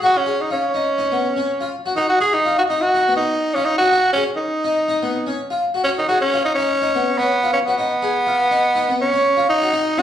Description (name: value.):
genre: afrobeat.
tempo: 124 BPM.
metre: 4/4.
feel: swing 56% on 16ths.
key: G# dorian.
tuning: A4 = 440 Hz.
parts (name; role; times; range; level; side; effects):
growling tenor saxophone; melody; 0.0-10.0 s; B3 to G#4; -17 LUFS; right 1 dB; slapback echo.
harpsichord; arpeggios; 0.0-10.0 s; B3 to G#4; -22 LUFS; left 4 dB; slapback echo.
room: moderate club reverb, RT60 0.6 s.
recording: live gig heard through the venue's PA, club reverb.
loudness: -16 LUFS.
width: side -10 dB against mid.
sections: 0.0-9.7 A section.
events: none.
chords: 0.0 G#m7.